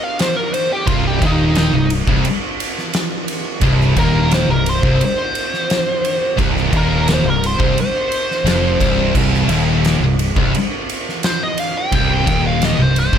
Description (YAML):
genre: stoner and doom metal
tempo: 87 BPM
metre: 4/4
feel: straight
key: C minor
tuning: A4 = 440 Hz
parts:
  - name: fuzz lead guitar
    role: melody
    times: 0.0-13.2 s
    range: Eb4 to G5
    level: -20 LUFS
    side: equal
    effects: wah, distortion, tape echo
  - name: oversized low-tuned drum kit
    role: drums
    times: 0.2-13.2 s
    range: crash cymbal, kick drum, ride cymbal, snare drum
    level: -20 LUFS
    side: equal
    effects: none
  - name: heavy high-gain guitar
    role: riff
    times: 0.9-13.2 s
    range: C2 to F2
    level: -21 LUFS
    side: left 1 dB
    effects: distortion
  - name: thick fuzz guitar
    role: riff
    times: 0.9-13.2 s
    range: C2 to F2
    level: -21 LUFS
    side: left 8 dB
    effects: distortion
  - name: thick fuzz guitar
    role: riff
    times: 0.9-13.2 s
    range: C2 to F2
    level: -20 LUFS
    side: right 6 dB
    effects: distortion
  - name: growling fingered electric bass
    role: bass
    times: 0.9-13.2 s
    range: C1 to F1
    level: -21 LUFS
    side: equal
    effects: overdrive, tube saturation
room: small room reverb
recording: none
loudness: -14 LUFS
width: side -8 dB against mid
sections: 0.0-13.2 A section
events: lead electric guitar solo 0.0-13.2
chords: 0.0 Cm